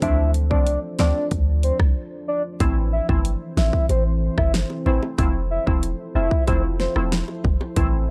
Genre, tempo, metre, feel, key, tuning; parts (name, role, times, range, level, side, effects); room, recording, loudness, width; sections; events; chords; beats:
dancehall; 93 BPM; 4/4; straight; A minor; A4 = 440 Hz
soft octave-layered synth lead; melody; 0.0-6.9 s; C5 to E5; -28 LUFS; equal; chorus, tremolo, tape echo
glassy wavetable pluck; accompaniment; 0.0-8.1 s; E3 to E4; -29 LUFS; equal; chorus
deep dark ambient pad; sustained chords; 0.0-8.1 s; E3 to C5; -35 LUFS; equal; chorus, built-in reverb, sidechain pumping
clean 808-style bass; bass; 0.0-8.1 s; E1 to D2; -24 LUFS; equal
pop drum kit; drums; 0.0-7.9 s; hi-hat, kick drum, rim click, snare drum; -24 LUFS; equal
bongos; percussion; 2.6-7.9 s; -36 LUFS; equal
little or no reverb; dry, gritty hardware recording; -21 LUFS; mono
0.0-2.6 A section; 2.6-8.1 B section
break 2.0-2.6
0.0 Dm7; 2.6 Am; 5.2 Fmaj7
| 0.02 0.67 1.31 1.96 | 2.60 3.25 3.89 4.54 | 5.18 5.83 6.47 7.12 | 7.76